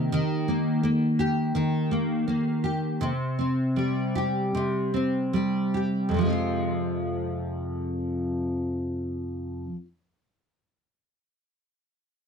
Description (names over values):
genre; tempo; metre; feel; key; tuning
pop; 72-85 BPM; 4/4; swing 55% on 16ths; F minor; A4 = 438 Hz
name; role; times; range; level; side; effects
nylon-string guitar; accompaniment; 0.0-9.8 s; F2 to G4; -24 LUFS; equal; double-tracked left and right
room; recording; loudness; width
moderate studio ambience, RT60 0.5 s; dry, close 1970s-style studio recording; -24 LUFS; side -6 dB against mid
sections
0.0-6.1 A section; 6.1-9.5 B section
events
slowing down 0.1-6.1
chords
0.1 Eb; 3.0 C5; 6.1 Fm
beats
| 0.12 0.83 1.55 2.27 | 3.01 3.76 4.54 5.33 | 6.15 6.98 7.82 8.65